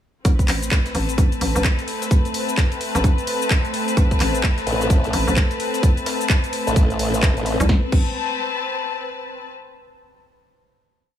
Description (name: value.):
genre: bass house.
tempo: 129 BPM.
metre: 4/4.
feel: swing 61% on 16ths.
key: A minor.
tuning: A4 = 440 Hz.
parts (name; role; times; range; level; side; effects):
sweeping resonant pad; sustained chords; 0.2-7.9 s; A3 to B4; -27 LUFS; right 1 dB; chorus, sidechain pumping.
hollow knocking FM bass; bass; 0.2-8.1 s; A1 to C2; -22 LUFS; equal; tube saturation, sidechain pumping.
breakbeat sampler-style drum kit; drums; 0.2-7.6 s; hi-hat, snare drum; -36 LUFS; right 1 dB; none.
electronic kick drum; drums; 0.2-8.0 s; none; -17 LUFS; equal; none.
house drum kit; drums; 0.2-8.0 s; crash cymbal, handclaps, hi-hat, shaker, snare drum; -26 LUFS; left 1 dB; none.
clear symphonic string section; texture; 0.2-9.5 s; C4 to A5; -26 LUFS; left 5 dB; sidechain pumping.
formant-sweep wobble bass; bass; 4.7-7.6 s; A1; -22 LUFS; equal; chorus, overdrive, sidechain pumping.
room: digital ambience.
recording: small room ambience.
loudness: -17 LUFS.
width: side -10 dB against mid.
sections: 0.2-7.7 drop; 7.7-9.6 final chord.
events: drop 0.2-7.7.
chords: 0.2 Amadd9.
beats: | 0.25 0.71 1.18 1.65 | 2.11 2.58 3.04 3.50 | 3.97 4.44 4.90 5.37 | 5.83 6.30 6.76 7.23 | 7.69 8.16 8.62 9.09.